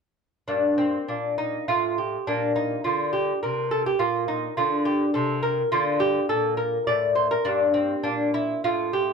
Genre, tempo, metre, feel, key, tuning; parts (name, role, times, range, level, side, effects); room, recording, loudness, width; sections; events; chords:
classical, baroque-style dance for lute; 103 BPM; 3/4; rubato; A4 = 439 Hz
lute; solo; 0.5-9.1 s; G2 to D5; -22 LUFS; equal
light reverb; close, detailed microphones; -22 LUFS; side -5 dB against mid
0.5-9.1 A section
0.5 Gm; 2.3 Bbmaj13; 5.7 Bb; 7.5 Gm